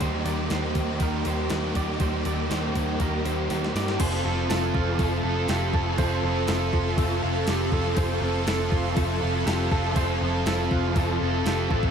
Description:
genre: rock, shoegaze and dream pop.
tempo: 121 BPM.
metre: 4/4.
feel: straight.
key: unclear.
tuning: A4 = 440 Hz.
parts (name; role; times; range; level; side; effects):
string machine, violas; sustained chords; 0.0-11.9 s; A4 to D6; -34 LUFS; equal; ensemble chorus.
direct-recorded clean electric guitar; arpeggios; 0.0-11.9 s; F4 to D5; -33 LUFS; right 6 dB; wide subtle chorus, analog delay.
overdriven electric guitar; riff; 0.0-11.9 s; Eb3 to A4; -30 LUFS; left 9 dB; ensemble chorus.
overdriven electric guitar; riff; 0.0-11.9 s; Eb3 to A4; -29 LUFS; right 8 dB; reverse reverb.
vintage muted picked electric bass; bass; 0.0-11.9 s; F1 to G2; -28 LUFS; equal; none.
crisp 8-bit digital drum machine; drums; 0.0-11.9 s; crash cymbal, hi-hat, kick drum, snare drum; -28 LUFS; equal; overdrive.
room: moderate plate reverb, RT60 2.0 s.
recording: dreamy mix soaked in reverb.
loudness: -22 LUFS.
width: side -7 dB against mid.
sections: 0.0-4.0 A section; 4.0-11.9 B section.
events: drum fill 3.5-4.0.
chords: 0.0 Ebmaj7; 4.0 Fmaj7.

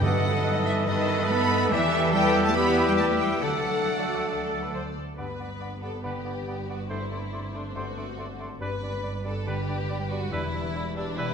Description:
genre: classical.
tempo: 140 BPM.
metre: 4/4.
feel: straight.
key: G major.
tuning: A4 = 440 Hz.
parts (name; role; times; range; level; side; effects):
rich symphonic violin section; melody; 0.0-11.3 s; D5 to B5; -34 LUFS; left 3 dB; none.
clear oboe; second line; 0.0-11.3 s; D5 to E5; -38 LUFS; right 2 dB; none.
mellow clarinet; second line; 0.0-11.3 s; D4 to B4; -38 LUFS; left 1 dB; none.
mellow silver concert flute; second line; 0.0-11.2 s; D#5 to C6; -36 LUFS; right 1 dB; none.
warm symphonic violin section; second line; 0.0-11.3 s; D4 to D5; -34 LUFS; left 4 dB; none.
warm bassoon; accompaniment; 0.0-11.3 s; G3 to B3; -36 LUFS; right 1 dB; none.
warm symphonic viola section; accompaniment; 0.0-11.3 s; G3 to D#5; -34 LUFS; right 1 dB; none.
dark French horn section; sustained chords; 0.0-11.3 s; G3 to E4; -34 LUFS; left 4 dB; none.
concert harp; arpeggios; 0.0-11.3 s; E2 to D5; -34 LUFS; left 6 dB; none.
warm trumpet; stabs; 0.0-11.3 s; G4 to C5; -33 LUFS; right 1 dB; none.
rich symphonic double bass section; bass; 0.0-11.3 s; E1 to G2; -34 LUFS; right 4 dB; none.
warm studio cello section; bass; 0.0-11.3 s; E2 to B3; -32 LUFS; right 3 dB; none.
timpani; percussion; 0.0-0.6 s; G2; -31 LUFS; equal; none.
room: wet recital hall reverb, RT60 1.7 s.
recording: none.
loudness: -24 LUFS.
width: side -6 dB against mid.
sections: 0.0-5.2 A section; 5.2-11.3 B section.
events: none.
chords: 0.0 B7/G; 1.7 Em; 3.4 D; 5.2 G; 6.9 D7/G; 8.6 G; 10.3 Em7.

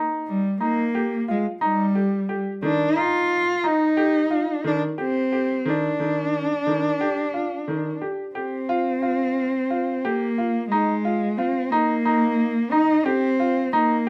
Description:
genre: contemporary instrumental, chamber music in an uneven meter.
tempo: 178 BPM (eighths).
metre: 9/8.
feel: straight.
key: Eb major.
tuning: A4 = 440 Hz.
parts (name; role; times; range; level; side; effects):
clear baby grand piano; arpeggios; 0.0-14.1 s; Eb3 to G4; -27 LUFS; equal; none.
dark cello; melody; 0.3-14.1 s; G3 to F4; -24 LUFS; equal; none.
room: wet studio reverb, RT60 0.8 s.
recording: none.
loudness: -23 LUFS.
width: mono.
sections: 0.0-8.7 A section; 8.7-14.1 B section.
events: none.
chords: 0.0 Eb.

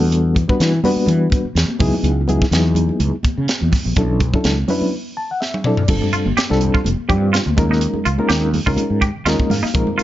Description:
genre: electric jazz fusion.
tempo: 125 BPM.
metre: 4/4.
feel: swing 55% on 16ths.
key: unclear.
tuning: A4 = 440 Hz.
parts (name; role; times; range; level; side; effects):
reed electric piano; accompaniment; 0.0-10.0 s; F#3 to A5; -19 LUFS; left 1 dB; overdrive, fast tremolo.
fretless electric bass; bass; 0.0-10.0 s; F1 to E3; -18 LUFS; equal; wide subtle chorus.
congas; percussion; 0.0-10.0 s; none; -26 LUFS; equal; none.
crisp fusion drum kit; drums; 0.1-10.0 s; crash cymbal, hi-hat, kick drum, snare drum, toms; -20 LUFS; equal; none.
twangy electric guitar; stabs; 6.1-10.0 s; Eb4 to G4; -22 LUFS; right 4 dB; ensemble chorus.
room: light reverb.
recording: nothing above 7.5 kHz.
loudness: -15 LUFS.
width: side -14 dB against mid.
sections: 0.0-5.9 A section; 5.9-10.0 B section.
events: break 4.9-5.9; reed electric piano fill 4.9-5.9, 9.0-9.7; drum fill 5.4-5.9.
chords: 0.0 Em11; 1.8 C#m11; 4.0 Bm11; 4.9 D9; 5.9 G9sus4; 7.6 Eb9sus4.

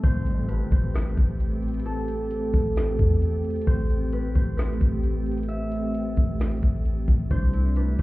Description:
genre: hip hop, atmospheric cloud-rap.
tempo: 132 BPM.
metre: 4/4.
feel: half-time.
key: A minor.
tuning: A4 = 437 Hz.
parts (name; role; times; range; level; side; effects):
concert harp; melody; 0.0-8.0 s; A4 to E5; -34 LUFS; right 2 dB; digital delay.
glassy FM pad; sustained chords; 0.0-8.0 s; C3 to G4; -31 LUFS; equal; ensemble chorus, built-in reverb, sidechain pumping.
soft 808-style bass; bass; 0.0-8.0 s; A1 to E2; -25 LUFS; equal; none.
smooth R&B drum kit; drums; 0.0-8.0 s; hi-hat, kick drum, snare drum; -24 LUFS; equal; none.
impact; sound effects; 0.0-1.9 s; none; -35 LUFS; equal; none.
glassy digital keys; arpeggios; 7.3-8.0 s; D4 to E4; -36 LUFS; equal; chorus.
room: digital ambience.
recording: heard muffled through a wall, club reverb, EQ.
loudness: -22 LUFS.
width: side -19 dB against mid.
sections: 0.0-8.0 A section.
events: impact 0.0-1.9.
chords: 0.0 Am9; 7.3 C69.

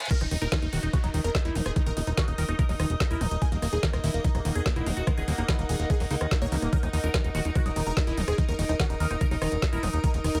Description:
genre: psychedelic trance.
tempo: 145 BPM.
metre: 4/4.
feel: straight.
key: Eb minor.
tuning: A4 = 440 Hz.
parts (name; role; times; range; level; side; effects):
overdriven acid bass; riff; 0.0-10.4 s; Db3 to Fb4; -37 LUFS; equal; sidechain pumping, digital delay.
garage drum kit; drums; 0.0-10.4 s; crash cymbal, hi-hat, rim click, snare drum; -36 LUFS; equal; overdrive.
riser, reverse cymbal and downlifter; sound effects; 0.0-3.4 s; none; -41 LUFS; equal; none.
supersaw stab; melody; 0.1-10.4 s; Bb3 to Db5; -36 LUFS; equal; phaser, sidechain pumping, digital delay.
evolving wavetable pad; sustained chords; 0.4-10.4 s; Eb4 to Eb5; -42 LUFS; equal; chorus, built-in reverb, sidechain pumping.
electronic kick drum; drums; 0.1-10.1 s; none; -28 LUFS; equal; overdrive.
airy breathy pad; texture; 0.8-10.4 s; Eb4 to Eb6; -39 LUFS; equal; chorus, sidechain pumping.
fat analog bass; bass; 0.2-10.4 s; Eb1 to Eb2; -31 LUFS; equal; none.
room: little or no reverb.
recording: high-pass filter.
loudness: -27 LUFS.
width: mono.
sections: 0.1-10.4 A section.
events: drop 0.1-10.4.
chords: 0.1 Eb5.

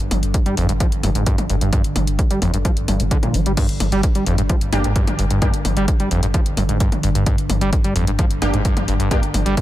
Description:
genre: driving peak-time techno.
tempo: 130 BPM.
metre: 4/4.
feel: straight.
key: unclear.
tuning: A4 = 440 Hz.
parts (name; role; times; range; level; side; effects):
saturated sub bass; bass; 0.0-9.6 s; G1; -22 LUFS; equal; tube saturation, sidechain pumping, low-pass filter.
deep dark ambient pad; drone; 0.0-9.6 s; G2 to D3; -26 LUFS; equal; chorus, built-in reverb, sidechain pumping.
punchy analog drum machine; drums; 0.0-9.6 s; crash cymbal, hi-hat, toms; -25 LUFS; left 2 dB; none.
electronic kick drum; drums; 0.3-9.6 s; none; -20 LUFS; equal; none.
overdriven acid bass; riff; 0.5-9.6 s; F2 to G3; -22 LUFS; equal; distortion, wide subtle chorus, cassette tape, sidechain pumping, tape echo.
rave stab; stabs; 4.7-5.5, 8.4-9.2 s; Bb3 to G4; -26 LUFS; equal; chorus, built-in reverb, sidechain pumping, tape echo.
room: little or no reverb.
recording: faint mains hum.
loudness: -16 LUFS.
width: side -14 dB against mid.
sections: 0.0-9.6 A section.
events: filter sweep on acid bass 0.0-9.6.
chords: 0.0 G5.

